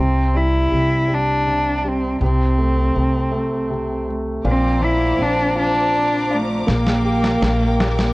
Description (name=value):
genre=six-eight pop ballad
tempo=54 BPM (dotted quarters)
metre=6/8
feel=straight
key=unclear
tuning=A4 = 440 Hz
part: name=dark cello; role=melody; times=0.0-8.1 s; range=A3 to E4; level=-20 LUFS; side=equal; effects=none
part: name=warm concert grand piano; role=accompaniment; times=0.0-8.1 s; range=Bb2 to G4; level=-24 LUFS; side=equal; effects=none
part: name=upright bass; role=bass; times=0.0-8.1 s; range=Bb1 to C2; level=-21 LUFS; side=equal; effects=none
part: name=warm studio string section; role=sustained chords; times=4.5-8.1 s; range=Bb4 to D6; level=-26 LUFS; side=left 1 dB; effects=none
part: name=electronic snare drum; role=drums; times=6.7-8.1 s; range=none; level=-22 LUFS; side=equal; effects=none
room=small room ambience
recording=worn, warbling old tape, cassette tape, warbly pitch drift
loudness=-16 LUFS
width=side -21 dB against mid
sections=0.0-8.1 A section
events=drum fill 6.7-8.1; grand piano fill 7.8-8.1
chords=0.0 C5; 2.2 Am/C; 4.4 Bbadd9; 6.7 Gm/Bb